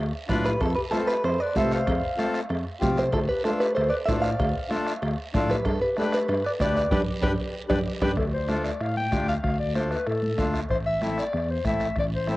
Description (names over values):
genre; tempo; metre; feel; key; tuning
latin, cumbia; 190 BPM; 4/4; straight; D dorian; A4 = 440 Hz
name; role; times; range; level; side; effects
overdriven tine electric piano; bass; 0.0-12.4 s; A1 to C3; -29 LUFS; equal; medium tremolo
accordion; accompaniment; 0.3-12.4 s; C4 to B4; -30 LUFS; left 2 dB; cassette tape
bombo; percussion; 0.3-12.4 s; none; -31 LUFS; equal; none
congas; percussion; 0.3-12.4 s; none; -32 LUFS; equal; none
guiro; percussion; 0.3-12.4 s; none; -44 LUFS; right 4 dB; none
timbales and cowbell; percussion; 0.3-8.1 s; none; -37 LUFS; right 2 dB; none
direct-recorded clean electric guitar; melody; 0.5-8.1 s; G4 to F5; -27 LUFS; right 1 dB; cassette tape
mellow clarinet; second line; 0.5-12.4 s; D4 to G5; -31 LUFS; left 2 dB; cassette tape
room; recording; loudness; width
light reverb; home recording on cassette; -23 LUFS; side -18 dB against mid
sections
0.0-8.2 A section; 8.2-12.4 B section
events
drum fill 6.9-8.2; band accent 6.9-8.2; clarinet solo 8.2-12.4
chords
0.0 Dm; 0.6 Fadd9; 3.1 Dm; 5.7 G; 8.2 Dm; 10.7 Am